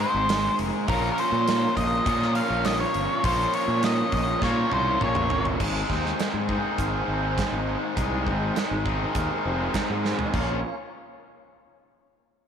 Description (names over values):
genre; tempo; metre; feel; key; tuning
classic rock; 101 BPM; 4/4; straight; Bb minor; A4 = 439 Hz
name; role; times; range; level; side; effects
octave-fuzz lead guitar; melody; 0.0-5.4 s; Bb4 to F5; -26 LUFS; equal; distortion, tape echo
tonewheel organ; sustained chords; 0.0-10.8 s; A3 to D5; -36 LUFS; right 9 dB; overdrive, lush chorus
overdriven electric guitar; riff; 0.0-10.6 s; Ab2 to Db5; -30 LUFS; left 11 dB; spring reverb
overdriven electric guitar; riff; 0.0-5.6 s; Ab2 to Bb3; -32 LUFS; right 1 dB; none
raw garage guitar; riff; 0.0-10.6 s; Bb2 to Db5; -33 LUFS; right 12 dB; overdrive
fuzz fingered electric bass; bass; 0.0-10.6 s; F1 to Bb2; -28 LUFS; equal; overdrive
gated 80s drum kit; drums; 0.0-10.5 s; crash cymbal, hi-hat, kick drum, snare drum, splash cymbal, toms; -30 LUFS; right 3 dB; none
room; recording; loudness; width
light reverb, studio ambience; 1960s-style stereo with parts hard left and right; -22 LUFS; side -8 dB against mid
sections
0.0-5.6 A section; 5.6-10.3 B section; 10.3-12.5 C section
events
drum fill 4.4-5.6, 10.0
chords
0.0 Abadd9; 0.9 Bbm; 5.6 Abadd9; 10.3 Bbm